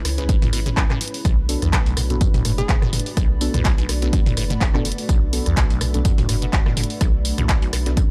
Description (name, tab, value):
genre	acid house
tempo	125 BPM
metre	4/4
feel	swing 55% on 16ths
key	unclear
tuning	A4 = 440 Hz
part	dark analog pad	sustained chords	0.0-8.1 s	G#3 to B4	-35 LUFS	equal	chorus, sidechain pumping
part	liquid acid bass	riff	0.0-8.0 s	B1 to E3	-28 LUFS	equal	phaser, tube saturation, subtle chorus, sidechain pumping, analog delay
part	warm sub bass	bass	0.0-8.0 s	F#1 to C#2	-27 LUFS	equal	tube saturation, sidechain pumping
part	granular cloud pad	texture	0.0-8.1 s	A3 to B5	-39 LUFS	equal	built-in reverb, sidechain pumping
part	dusty soul sampler-style drum kit	drums	0.1-8.1 s	hi-hat, snare drum, tambourine	-38 LUFS	equal	none
part	punchy analog drum machine	drums	0.1-8.1 s	handclaps, hi-hat, rim click, toms	-27 LUFS	equal	none
part	deep mellow chord stab	stabs	0.2-8.0 s	B3 to B4	-31 LUFS	equal	chorus, analog delay
part	electronic kick drum	drums	0.3-8.1 s	none	-21 LUFS	equal	none
part	hollow square pluck	melody	2.6-3.2 s	G#4	-34 LUFS	equal	chorus, analog delay
room	little or no reverb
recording	dry, gritty hardware recording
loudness	-20 LUFS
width	mono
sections	0.0-8.1 A section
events	none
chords	0.0 C#m7; 1.2 Bm7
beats	0.29 0.77 | 1.25 1.73 2.21 2.69 | 3.17 3.65 4.13 4.61 | 5.09 5.57 6.05 6.53 | 7.01 7.49 7.97